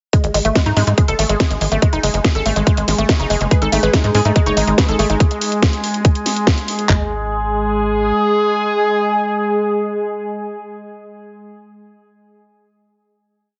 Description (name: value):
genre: psychedelic trance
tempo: 142 BPM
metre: 4/4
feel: straight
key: unclear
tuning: A4 = 441 Hz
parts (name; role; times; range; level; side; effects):
- evolving wavetable pad; sustained chords; 0.9-11.1 s; G#3 to G#4; -24 LUFS; equal; phaser, built-in reverb, sidechain pumping
- woody wave-folded pluck; riff; 0.1-7.1 s; G#3 to A4; -23 LUFS; equal; chorus, sidechain pumping, delay
- garage drum kit; drums; 0.1-7.0 s; handclaps, kick drum, toms; -17 LUFS; equal; none
- garage drum kit; drums; 0.1-6.9 s; hi-hat, snare drum; -23 LUFS; equal; none
- tight sequencer bass; bass; 0.2-8.1 s; F#1 to G#2; -22 LUFS; equal; none
- overdriven synth lead; melody; 3.5-11.0 s; D#4 to C#5; -22 LUFS; equal; phaser, sidechain pumping, dub echo
room: moderate lush hall reverb, RT60 2.1 s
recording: heavily compressed radio sound, nothing above 7.6 kHz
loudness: -16 LUFS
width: mono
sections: 0.1-6.9 drop; 6.9-10.3 final note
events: drop 0.1-6.9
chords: 0.1 G#5; 6.9 N.C.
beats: | 0.13 0.56 0.98 1.40 | 1.82 2.25 2.67 3.09 | 3.51 3.94 4.36 4.78 | 5.20 5.62 6.05 6.47 | 6.89 7.32 7.74 8.16 | 8.58 9.01 9.43 9.85